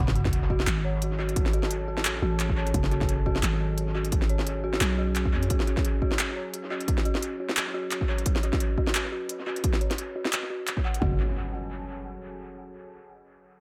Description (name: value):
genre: half-time drum and bass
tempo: 174 BPM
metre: 4/4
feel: swing 56% on 16ths, half-time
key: F# minor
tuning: A4 = 440 Hz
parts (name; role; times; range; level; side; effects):
- deep dark ambient pad; sustained chords; 0.2-12.4 s; F#4 to B5; -40 LUFS; equal; chorus, built-in reverb, vintage 12-bit sampler grit, sidechain pumping
- growling 808-style bass; bass; 0.0-5.5, 11.0-11.2 s; F#1 to F#2; -30 LUFS; equal; none
- sub drop and impact; sound effects; 0.0-1.4, 11.1-12.4 s; none; -37 LUFS; equal; none
- industrial drum kit; drums; 0.1-11.0 s; handclaps, hi-hat, snare drum; -34 LUFS; equal; dub echo
- dark detuned synth bell; arpeggios; 0.2-11.2 s; F#4 to F#5; -36 LUFS; equal; chorus, low-pass filter, dub echo
- electronic kick drum; drums; 0.3-11.1 s; none; -29 LUFS; equal; none
room: light reverb, digital ambience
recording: echo-heavy mix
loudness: -27 LUFS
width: mono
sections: 0.0-11.0 A section; 11.0-12.4 B section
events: impact 0.0-1.4; filter sweep on ambient pad 0.0-11.0; filter sweep on synth bell 0.0-11.0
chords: 0.0 F#m